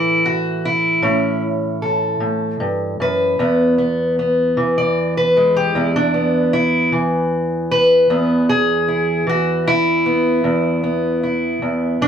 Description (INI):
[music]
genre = acoustic country blues, solo or duo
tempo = 51 BPM (dotted quarters)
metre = 12/8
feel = straight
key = E mixolydian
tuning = A4 = 442 Hz
[part]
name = fingerpicked steel-string acoustic guitar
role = solo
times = 0.0-12.1 s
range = E2 to D5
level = -15 LUFS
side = equal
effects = none
[sound]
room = wet booth ambience, RT60 0.2 s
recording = heard from further back in the room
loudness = -15 LUFS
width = side -8 dB against mid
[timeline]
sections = 0.0-12.1 A section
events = steel-string acoustic guitar solo 0.0-12.1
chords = 0.0 A; 3.4 E